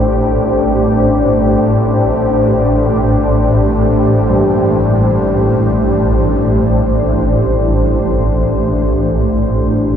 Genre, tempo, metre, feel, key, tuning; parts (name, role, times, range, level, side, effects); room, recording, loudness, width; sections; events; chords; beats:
dark ambient drone; free time; A minor; A4 = 439 Hz
deep dark ambient pad; sustained chords; 0.0-10.0 s; A3 to C5; -14 LUFS; left 1 dB; chorus, built-in reverb
swarming drone; drone; 0.0-10.0 s; A1 to A2; -14 LUFS; equal; built-in reverb, analog chorus
bronze singing bowl; texture; 0.0-10.0 s; barely audible
carillon bells; arpeggios; 4.3-9.8 s; G3; -21 LUFS; equal
wet huge ambient reverb, RT60 8.4 s; dreamy mix soaked in reverb, cassette tape; -11 LUFS; side -8 dB against mid
0.0-10.0 A section
0.0 Am
free time